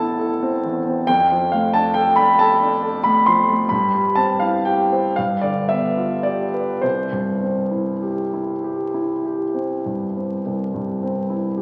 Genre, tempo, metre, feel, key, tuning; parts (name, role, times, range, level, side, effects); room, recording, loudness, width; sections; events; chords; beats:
classical, romantic nocturne for solo piano; 32-46 BPM (dotted quarters); 12/8; rubato; C major; A4 = 440 Hz
dark concert grand piano; solo; 0.0-11.6 s; A1 to C6; -20 LUFS; equal
wet concert hall reverb, RT60 2.1 s; very old 78 rpm record, vinyl crackle; -20 LUFS; mono
0.0-11.6 A section
0.0 Am; 1.1 Dm/F; 3.7 C/G; 5.2 G7; 6.8 C
| 1.08 2.39 3.71 5.18 | 6.84 8.65 10.46